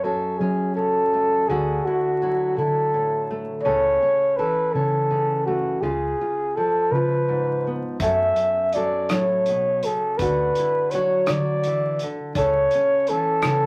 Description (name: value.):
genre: acoustic folk-pop ballad.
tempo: 55 BPM (dotted quarters).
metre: 6/8.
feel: straight.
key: F# minor.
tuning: A4 = 440 Hz.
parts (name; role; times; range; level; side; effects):
breathy flugelhorn; melody; 0.0-13.7 s; F#4 to E5; -23 LUFS; equal; none.
nylon-string guitar; accompaniment; 0.0-13.7 s; F#2 to A4; -30 LUFS; equal; none.
hollow-body short-scale fingered electric bass; bass; 0.4-13.7 s; C#2 to F#3; -30 LUFS; equal; none.
loose indie drum kit; drums; 8.0-13.6 s; hi-hat, kick drum, rim click; -32 LUFS; equal; none.
room: wet club reverb, RT60 0.5 s.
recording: vinyl crackle.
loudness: -22 LUFS.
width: mono.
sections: 0.0-13.7 A section.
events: none.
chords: 0.0 F#m; 1.5 Dadd9; 3.7 A/C#; 5.8 C#7; 8.0 F#m; 10.2 Dadd9; 12.4 A/C#.